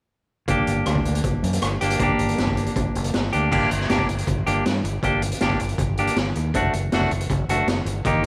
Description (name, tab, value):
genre	indie rock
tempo	158 BPM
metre	4/4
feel	straight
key	G harmonic minor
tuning	A4 = 440 Hz
part	crunchy overdriven guitar	riff	0.5-8.2 s	Eb3 to G4	-26 LUFS	equal	none
part	growling fingered electric bass	bass	0.5-8.3 s	F#1 to G2	-28 LUFS	equal	overdrive
part	raw garage drum kit	drums	0.5-8.3 s	crash cymbal, hi-hat, kick drum, rim click, snare drum	-27 LUFS	equal	none
room	moderate echo chamber reverb, RT60 2.1 s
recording	none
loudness	-22 LUFS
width	mono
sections	0.5-3.5 A section; 3.5-8.3 B section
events	none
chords	0.5 Gm; 6.5 D/F#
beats	| 0.48 0.86 1.24 1.62 | 2.00 2.38 2.76 3.14 | 3.52 3.90 4.27 4.65 | 5.03 5.41 5.79 6.17 | 6.54 6.92 7.30 7.68 | 8.05